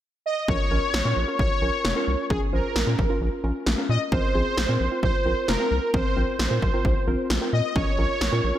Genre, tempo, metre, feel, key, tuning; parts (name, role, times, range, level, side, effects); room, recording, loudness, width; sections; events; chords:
synth-pop; 132 BPM; 4/4; straight; Bb minor; A4 = 441 Hz
analog synth brass; melody; 0.3-8.6 s; Ab4 to Eb5; -26 LUFS; right 1 dB; chorus, slapback echo
soft round pluck; accompaniment; 0.5-8.6 s; C4 to C5; -29 LUFS; equal; chorus, slapback echo
rubbery square bass; bass; 0.5-8.5 s; F1 to Bb2; -25 LUFS; equal
punchy analog drum machine; drums; 0.5-8.3 s; kick drum, snare drum; -26 LUFS; equal; overdrive
moderate lush hall reverb, RT60 2.1 s; big arena sound; -21 LUFS; side -12 dB against mid
0.5-8.6 A section
0.5 Bbm; 4.1 Fsus4; 7.8 Bbm